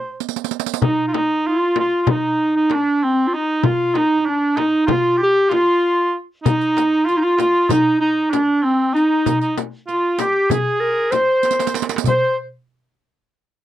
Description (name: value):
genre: Turkish makam ensemble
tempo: 192 BPM (eighths)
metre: 9/8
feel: straight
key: unclear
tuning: A4 = 440 Hz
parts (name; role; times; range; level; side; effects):
- breathy clarinet; melody; 0.0-12.4 s; C4 to C5; -17 LUFS; equal; slapback echo
- warm oboe; second line; 0.0-12.4 s; C4 to C5; -23 LUFS; right 3 dB; none
- riq; percussion; 0.2-0.8, 6.5-12.4 s; none; -25 LUFS; right 21 dB; none
- darbuka; percussion; 0.8-12.3 s; none; -24 LUFS; right 3 dB; none
- frame drum; percussion; 0.8-12.4 s; none; -23 LUFS; left 13 dB; none
room: light reverb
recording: dry, close 1970s-style studio recording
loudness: -16 LUFS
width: side -12 dB against mid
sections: 0.8-12.1 A section; 12.1-13.6 B section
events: drum fill 0.2-0.8, 11.4-12.1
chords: none